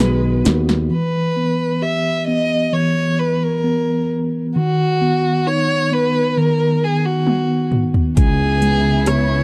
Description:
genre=pop ballad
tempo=66 BPM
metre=4/4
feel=straight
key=unclear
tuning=A4 = 440 Hz
part: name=rich violin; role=melody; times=0.0-9.4 s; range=F#4 to E5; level=-22 LUFS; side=equal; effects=tape echo
part: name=tine electric piano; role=accompaniment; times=0.0-9.4 s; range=C#3 to G4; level=-21 LUFS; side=equal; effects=medium tremolo
part: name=warm studio string section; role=sustained chords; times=0.0-0.9, 8.2-9.4 s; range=C#3 to E4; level=-29 LUFS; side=equal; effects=none
part: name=sustaining fretless electric bass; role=bass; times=0.0-0.9, 8.2-9.4 s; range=B1 to D#2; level=-20 LUFS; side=equal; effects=none
part: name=deep house drum kit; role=drums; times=0.0-0.9, 7.3-9.3 s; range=hi-hat, kick drum, rim click, snare drum, toms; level=-19 LUFS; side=equal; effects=overdrive
room=little or no reverb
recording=dry, close 1970s-style studio recording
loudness=-17 LUFS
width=mono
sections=0.9-9.4 A section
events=drum fill 0.0-0.9, 7.3-8.2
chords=0.0 B; 0.9 Em; 4.6 B/D#; 8.2 C#m7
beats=0.00 | 0.92 1.83 2.74 3.65 | 4.56 5.46 6.36 7.27 | 8.17 9.07

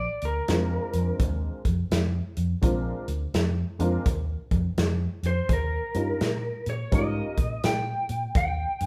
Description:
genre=electric blues shuffle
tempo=84 BPM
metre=4/4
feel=swing 64% on 8ths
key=Bb mixolydian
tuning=A4 = 440 Hz
part: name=lightly driven lead guitar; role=melody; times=0.0-8.9 s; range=Bb4 to G5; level=-32 LUFS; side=equal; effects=none
part: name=vintage muted fingered electric bass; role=bass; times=0.0-8.9 s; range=Bb1 to Bb2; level=-30 LUFS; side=equal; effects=none
part: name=natural country drum kit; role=drums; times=0.2-8.9 s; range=hi-hat, kick drum, snare drum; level=-30 LUFS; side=equal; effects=none
part: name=honky-tonk upright piano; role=accompaniment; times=0.5-7.3 s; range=G3 to Bb4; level=-33 LUFS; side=equal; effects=none
room=moderate large studio reverb, RT60 1.1 s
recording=band playing live in one room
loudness=-27 LUFS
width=mono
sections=0.0-8.9 A section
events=none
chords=0.0 Bb7; 5.5 Eb7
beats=0.48 1.20 1.92 | 2.63 3.35 4.06 4.78 | 5.49 6.21 6.92 7.63 | 8.35

